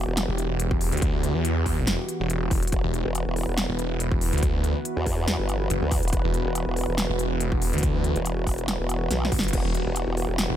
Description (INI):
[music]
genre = heavy wobble dubstep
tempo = 141 BPM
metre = 4/4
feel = swing 54% on 16ths, half-time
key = E minor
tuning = A4 = 439 Hz
[part]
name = supersaw pad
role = sustained chords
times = 0.0-10.6 s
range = E3 to B4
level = -30 LUFS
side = right 1 dB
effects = sidechain pumping, low-pass filter
[part]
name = formant-sweep wobble bass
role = bass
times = 0.0-10.5 s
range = E1 to E2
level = -27 LUFS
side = equal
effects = chorus, overdrive
[part]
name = big-room dance drum kit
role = drums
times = 0.2-10.5 s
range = crash cymbal, hi-hat, snare drum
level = -30 LUFS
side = equal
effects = overdrive
[part]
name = snarling distorted saw bass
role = bass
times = 0.3-10.6 s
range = E1 to E2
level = -25 LUFS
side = equal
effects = distortion, overdrive
[part]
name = electronic kick drum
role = drums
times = 0.7-9.6 s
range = none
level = -26 LUFS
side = equal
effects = overdrive
[sound]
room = digital ambience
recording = none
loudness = -22 LUFS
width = side -11 dB against mid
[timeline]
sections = 0.0-10.6 A section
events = drum fill 9.1-9.5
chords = 0.0 Emadd9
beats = 0.17 0.60 | 1.02 1.45 1.87 2.30 | 2.72 3.15 3.58 4.00 | 4.43 4.85 5.28 5.70 | 6.13 6.55 6.98 7.40 | 7.83 8.26 8.68 9.11 | 9.53 9.96 10.38